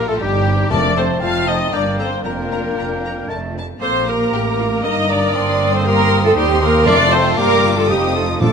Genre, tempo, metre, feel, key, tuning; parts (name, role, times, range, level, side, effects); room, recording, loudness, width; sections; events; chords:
quick classical-period movement for symphony orchestra; 117 BPM; 3/4; straight; Bb major; A4 = 440 Hz
rich studio violin section; melody; 0.0-8.5 s; G4 to Eb6; -26 LUFS; left 4 dB
clear oboe; second line; 0.0-8.5 s; G4 to Eb6; -27 LUFS; left 1 dB
large flute ensemble; second line; 0.0-8.5 s; G4 to F5; -26 LUFS; left 1 dB
mellow clarinet; second line; 0.0-8.5 s; Eb4 to C5; -26 LUFS; left 1 dB
warm studio violin section; second line; 0.0-8.5 s; A3 to G4; -28 LUFS; left 4 dB
rich studio viola section; accompaniment; 0.0-8.5 s; G4 to F5; -18 LUFS; right 1 dB
warm bassoon; accompaniment; 0.0-8.5 s; F3 to C4; -26 LUFS; right 1 dB
warm French horn section; sustained chords; 0.0-8.5 s; G3 to F4; -24 LUFS; left 5 dB
warm studio cello section; bass; 0.0-8.5 s; Eb2 to Bb2; -24 LUFS; right 2 dB
warm studio double bass section; bass; 0.0-8.5 s; F1 to Eb2; -23 LUFS; right 3 dB
timpani; percussion; 0.7-1.4, 6.9-8.5 s; F2 to Bb2; -23 LUFS; left 2 dB
light reverb; close, detailed microphones; -14 LUFS; side -6 dB against mid
0.0-8.5 A section
0.0 Cm7; 0.7 F; 1.7 Gm; 2.3 Bb/F; 3.3 F; 3.8 Bb; 4.8 Eb/G; 5.3 Cm7/G; 6.9 F; 7.4 Gm; 7.9 F7